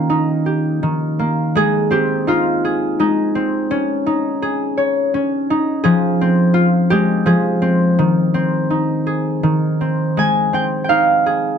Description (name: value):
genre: children's music, lullaby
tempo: 84 BPM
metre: 3/4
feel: rubato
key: Ab major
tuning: A4 = 440 Hz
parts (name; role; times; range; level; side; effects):
- concert harp; solo; 0.0-11.6 s; Eb3 to Ab5; -14 LUFS; equal; none
room: light reverb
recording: dark, warm production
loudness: -14 LUFS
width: side -7 dB against mid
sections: 0.0-1.6 A section; 1.6-10.2 B section; 10.2-11.6 B section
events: none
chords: 0.0 Eb; 1.6 Ab; 3.7 Dbsus2; 5.9 Fm; 8.0 Ab/Eb; 10.2 Ab